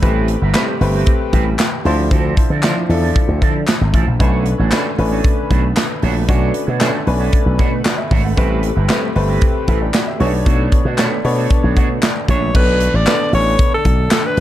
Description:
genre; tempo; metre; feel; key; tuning
early-eighties boogie funk; 115 BPM; 4/4; straight; B phrygian; A4 = 440 Hz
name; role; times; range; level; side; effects
warm baby grand piano; accompaniment; 0.0-13.7 s; F3 to B5; -22 LUFS; left 2 dB; none
lush unison pad; sustained chords; 0.0-14.4 s; C3 to B4; -28 LUFS; left 1 dB; chorus
electric guitar with an envelope filter; riff; 0.0-12.5 s; F3 to C#5; -24 LUFS; right 8 dB; lush chorus
slap bass with an envelope filter; bass; 0.0-14.4 s; G1 to D3; -17 LUFS; equal; none
modern studio drum kit; drums; 0.0-14.4 s; crash cymbal, handclaps, hi-hat, kick drum, snare drum; -17 LUFS; equal; none
group handclap; percussion; 0.5-14.2 s; none; -24 LUFS; left 2 dB; none
bright alto saxophone; melody; 12.3-14.4 s; A4 to D5; -17 LUFS; equal; slapback echo
room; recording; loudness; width
studio reverb; dark, warm production; -13 LUFS; side -13 dB against mid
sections
0.0-12.5 A section; 12.5-14.4 B section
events
grand piano fill 11.0-12.5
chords
0.0 Am9; 1.9 Dm9; 4.2 Bm9; 8.4 Am9; 10.2 Bm9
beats
| 0.03 0.55 1.07 1.59 | 2.11 2.63 3.16 3.68 | 4.20 4.72 5.24 5.76 | 6.29 6.81 7.33 7.85 | 8.37 8.90 9.42 9.94 | 10.46 10.98 11.50 12.03 | 12.55 13.07 13.59 14.11

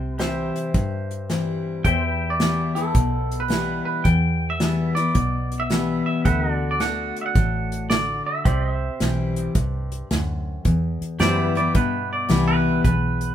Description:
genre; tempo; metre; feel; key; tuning
honky-tonk and classic country; 109 BPM; 4/4; swing 66% on 8ths; E minor; A4 = 440 Hz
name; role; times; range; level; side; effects
twangy electric guitar; second line; 0.0-13.3 s; A4 to G5; -25 LUFS; right 2 dB; none
picked steel-string acoustic guitar; accompaniment; 0.0-13.3 s; E2 to F#4; -25 LUFS; left 4 dB; none
vintage muted fingered electric bass; bass; 0.0-13.3 s; A1 to G2; -26 LUFS; right 1 dB; none
pedal steel guitar; sustained chords; 0.2-13.3 s; F#4 to E5; -33 LUFS; right 2 dB; none
unplugged drum kit; drums; 0.2-13.3 s; hi-hat, kick drum, snare drum; -22 LUFS; right 1 dB; none
room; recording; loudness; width
little or no reverb; minimal, uncompressed stereo recording; -20 LUFS; side -10 dB against mid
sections
0.0-10.7 A section; 10.7-13.3 B section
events
clean electric guitar solo 0.0-10.7, 10.7-13.3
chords
0.0 C; 1.8 Em; 6.3 D; 8.5 C; 10.7 Em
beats
0.19 0.74 1.29 | 1.84 2.39 2.95 3.50 | 4.05 4.60 5.15 5.70 | 6.25 6.80 7.35 7.90 | 8.45 9.00 9.55 10.10 | 10.65 11.20 11.75 12.30 | 12.85

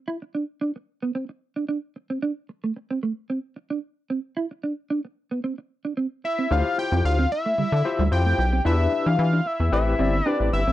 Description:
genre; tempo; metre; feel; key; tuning
funk; 112 BPM; 4/4; straight; D dorian; A4 = 442 Hz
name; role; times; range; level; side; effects
mellow electric guitar; riff; 0.1-10.7 s; G3 to E4; -26 LUFS; right 3 dB; lush chorus
fat analog lead; melody; 6.2-10.7 s; E5 to G5; -25 LUFS; left 1 dB; phaser
overdriven tine electric piano; accompaniment; 6.5-10.6 s; C4 to D5; -27 LUFS; left 3 dB; fast tremolo
rubbery square bass; bass; 6.5-10.7 s; G1 to E3; -21 LUFS; left 1 dB; none
room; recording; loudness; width
little or no reverb; dry, close 1970s-style studio recording; -22 LUFS; side -14 dB against mid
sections
0.0-6.5 A section; 6.5-10.7 B section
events
none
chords
0.1 N.C.; 1.2 Csus2; 2.2 D5; 4.4 E5; 5.4 Csus2; 6.0 N.C.; 6.5 Dm11; 8.7 Em7; 9.7 Am9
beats
| 0.08 0.62 1.15 1.69 | 2.22 2.76 3.29 3.83 | 4.37 4.90 5.44 5.97 | 6.51 7.04 7.58 8.12 | 8.65 9.19 9.72 10.26

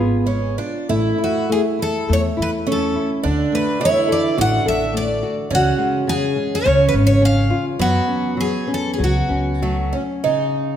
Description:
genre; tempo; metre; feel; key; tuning
fado-style ballad; 93-108 BPM; 4/4; rubato; F# minor; A4 = 440 Hz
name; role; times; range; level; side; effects
picked twelve-string acoustic guitar; melody; 0.0-9.9 s; F#4 to F#5; -20 LUFS; left 1 dB; none
picked twelve-string acoustic guitar; second line; 0.0-10.8 s; A3 to E4; -22 LUFS; right 5 dB; none
nylon-string guitar; accompaniment; 0.0-10.8 s; C#3 to A4; -24 LUFS; left 4 dB; none
upright bass; bass; 0.0-9.9 s; G#1 to F#2; -20 LUFS; equal; none
room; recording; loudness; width
wet recital hall reverb, RT60 1.7 s; none; -16 LUFS; side -10 dB against mid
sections
0.0-10.3 A section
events
none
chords
0.0 C#; 0.9 A; 3.2 D; 5.5 C#sus4; 6.7 C#; 7.8 F#5; 10.3 C#sus2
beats
0.27 | 0.89 1.50 2.09 2.67 | 3.25 3.82 4.39 4.95 | 5.51 6.09 6.67 7.24 | 7.80 8.39 9.00 9.63 | 10.26

